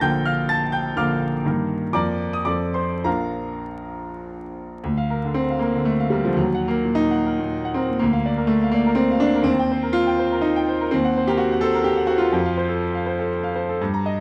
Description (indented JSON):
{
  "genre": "classical, romantic character piece for solo piano",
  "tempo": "98-131 BPM",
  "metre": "3/4",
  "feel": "rubato",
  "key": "Bb major",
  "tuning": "A4 = 440 Hz",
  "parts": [
    { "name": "bright grand piano", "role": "solo", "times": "0.0-14.2 s", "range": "Bb1 to A6", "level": "-22 LUFS", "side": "equal", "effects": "none" }
  ],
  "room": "light reverb",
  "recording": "close, detailed microphones, vinyl crackle",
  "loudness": "-21 LUFS",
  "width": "mono",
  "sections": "0.0-4.8 A section; 4.8-14.2 B section",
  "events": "none",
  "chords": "0.0 Bb; 1.5 Eb/G; 2.0 Bb/F; 2.5 F; 3.0 Bb; 4.8 Bb/D; 6.4 Ebm; 8.0 Bb/D; 9.5 Cm7/Eb; 10.9 Cm7b5/Eb; 12.4 F",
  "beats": "| 0.04 0.50 0.98 | 1.46 1.95 2.47 | 3.05 3.65 4.26 | 4.84 5.36 5.86 | 6.39 6.97 7.51 | 8.00 8.50 8.99 | 9.48 9.96 10.44 | 10.92 11.40 11.88 | 12.35 12.83 13.31 | 13.80"
}